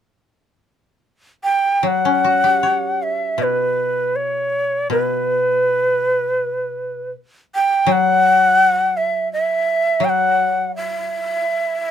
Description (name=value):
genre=japanese traditional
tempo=74-85 BPM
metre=4/4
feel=rubato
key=unclear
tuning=A4 = 443 Hz
part: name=breathy bright shakuhachi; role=melody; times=1.4-11.9 s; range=B4 to G5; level=-16 LUFS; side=equal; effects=none
part: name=koto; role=accompaniment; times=1.8-11.9 s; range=B2 to C#5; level=-24 LUFS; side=left 3 dB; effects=none
room=light reverb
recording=close, detailed microphones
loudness=-16 LUFS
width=side -9 dB against mid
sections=0.0-1.9 A section; 1.9-11.9 B section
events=none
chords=none